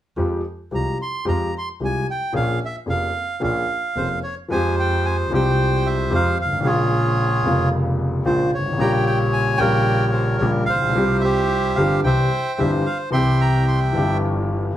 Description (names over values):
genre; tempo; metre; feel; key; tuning
tango; 111 BPM; 4/4; rubato; F harmonic minor; A4 = 440 Hz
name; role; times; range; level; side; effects
warm grand piano; accompaniment; 0.2-14.7 s; F1 to Ab4; -21 LUFS; left 1 dB; none
bright double bass; bass; 0.2-14.7 s; F1 to F2; -25 LUFS; right 1 dB; none
bandoneon; melody; 0.7-14.2 s; F4 to C6; -22 LUFS; right 1 dB; plate reverb
room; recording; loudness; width
moderate studio reverb, RT60 0.6 s; heard from further back in the room; -18 LUFS; side -12 dB against mid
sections
0.2-4.5 A section; 4.5-14.8 B section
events
none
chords
0.2 Fmadd9; 2.3 Bbm7; 4.5 Fmadd9; 6.7 Bbm7; 8.8 Gdim/Bb; 11.0 Csus4; 12.0 C